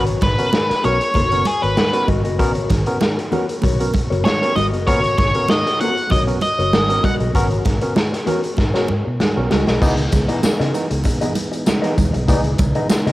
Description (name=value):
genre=funk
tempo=97 BPM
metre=4/4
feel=straight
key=G# minor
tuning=A4 = 439 Hz
part: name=mellow electric guitar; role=accompaniment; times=0.0-13.1 s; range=B3 to D#5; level=-25 LUFS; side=left 4 dB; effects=cassette tape
part: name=barky tine electric piano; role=stabs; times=0.0-13.0 s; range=G#2 to A#4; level=-25 LUFS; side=right 1 dB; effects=overdrive, auto-pan, cassette tape, analog delay
part: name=vintage muted fingered electric bass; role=bass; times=0.0-13.1 s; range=F#1 to C#3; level=-22 LUFS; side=equal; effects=tube saturation
part: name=raw garage drum kit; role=drums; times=0.1-13.1 s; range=crash cymbal, hi-hat, kick drum, snare drum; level=-19 LUFS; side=equal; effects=cassette tape
part: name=octave-fuzz lead guitar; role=melody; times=0.2-7.1 s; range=G#4 to F#5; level=-19 LUFS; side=equal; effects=distortion, cassette tape
part: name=congas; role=percussion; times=0.2-13.0 s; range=none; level=-24 LUFS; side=right 4 dB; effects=none
part: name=tonewheel organ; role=sustained chords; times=9.8-13.1 s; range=E3 to D#4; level=-27 LUFS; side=right 1 dB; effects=none
part: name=tambourine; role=percussion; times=9.8-13.1 s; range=none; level=-35 LUFS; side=left 3 dB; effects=none
room=light reverb, studio ambience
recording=home recording on cassette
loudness=-15 LUFS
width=side -17 dB against mid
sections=0.0-9.8 A section; 9.8-13.1 B section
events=drum fill 8.6-9.8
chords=0.0 G#m11; 9.8 C#m9